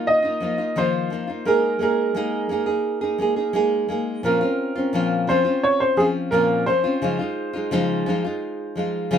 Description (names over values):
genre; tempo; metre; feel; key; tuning
pop; 86 BPM; 4/4; straight; unclear; A4 = 440 Hz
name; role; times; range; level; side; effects
clear upright piano; melody; 0.0-9.2 s; Ab4 to F5; -22 LUFS; right 1 dB; none
nylon-string guitar; accompaniment; 0.0-9.2 s; Bb2 to Ab4; -22 LUFS; equal; none
room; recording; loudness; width
light reverb; minimal, uncompressed stereo recording; -19 LUFS; side -8 dB against mid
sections
0.0-4.2 A section; 4.2-9.2 B section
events
none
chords
0.0 Ebsus2; 1.5 Absus2; 4.2 Bbmadd9; 7.0 Dbadd9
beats
0.07 0.77 | 1.47 2.16 2.86 3.55 | 4.25 4.94 5.64 6.33 | 7.03 7.72 8.42 9.11